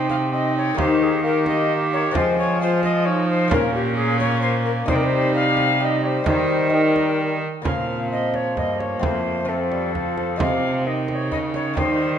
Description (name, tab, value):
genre	classical, renaissance-style consort dance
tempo	131 BPM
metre	3/4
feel	straight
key	Bb dorian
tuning	A4 = 440 Hz
part	mellow alto recorder	melody	0.0-12.2 s	G4 to F5	-24 LUFS	left 3 dB	none
part	warm viola	second line	0.0-12.2 s	Bb3 to G4	-26 LUFS	right 5 dB	none
part	lute	accompaniment	0.0-12.2 s	F2 to G4	-28 LUFS	left 5 dB	none
part	warm bassoon	accompaniment	0.0-12.2 s	Eb3 to C4	-27 LUFS	left 2 dB	none
part	rich cello	bass	0.0-12.2 s	F2 to F3	-23 LUFS	right 2 dB	none
part	frame drum	percussion	0.1-12.0 s	none	-28 LUFS	right 3 dB	none
room	wet recital hall reverb, RT60 1.4 s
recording	nothing above 10.5 kHz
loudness	-18 LUFS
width	side -8 dB against mid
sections	0.0-7.7 A section; 7.7-12.2 B section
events	none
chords	0.0 Cm; 0.8 Eb; 2.2 Fm; 3.5 Bbm; 4.9 Cm; 6.3 Eb; 7.7 Bbm; 9.0 F; 10.4 Cm